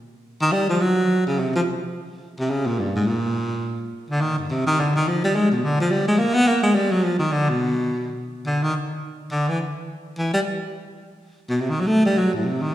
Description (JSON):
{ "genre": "jazz", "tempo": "212 BPM", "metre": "4/4", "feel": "swing 62% on 8ths", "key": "unclear", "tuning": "A4 = 440 Hz", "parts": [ { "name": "breathy baritone saxophone", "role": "solo", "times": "0.4-12.7 s", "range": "G2 to B3", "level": "-20 LUFS", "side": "equal", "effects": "none" } ], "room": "wet recital hall reverb, RT60 1.8 s", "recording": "recorded in a church or concert hall", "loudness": "-19 LUFS", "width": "side -13 dB against mid", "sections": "0.0-8.2 A section; 8.2-12.7 A section", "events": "baritone saxophone solo 0.0-8.2, 8.2-12.7", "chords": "none", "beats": "| 0.22 0.50 0.78 1.07 | 1.35 1.63 1.92 2.20 | 2.48 2.77 3.05 3.33 | 3.62 3.90 4.18 4.47 | 4.75 5.03 5.32 5.60 | 5.88 6.17 6.45 6.74 | 7.02 7.30 7.59 7.87 | 8.15 8.44 8.72 9.01 | 9.29 9.58 9.86 10.15 | 10.43 10.72 11.00 11.29 | 11.57 11.86 12.14 12.43 | 12.71" }